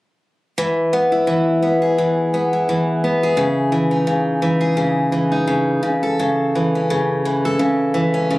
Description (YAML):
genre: pop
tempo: 86 BPM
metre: 4/4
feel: swing 55% on 16ths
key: E major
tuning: A4 = 440 Hz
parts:
  - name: picked steel-string acoustic guitar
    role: accompaniment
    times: 0.6-8.4 s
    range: C#3 to A4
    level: -16 LUFS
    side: equal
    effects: none
room: little or no reverb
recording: recorded on a phone in the room, club reverb, compression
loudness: -16 LUFS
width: side -19 dB against mid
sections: 0.6-8.4 A section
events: none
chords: 0.6 E; 3.4 C#madd9; 5.8 A/C#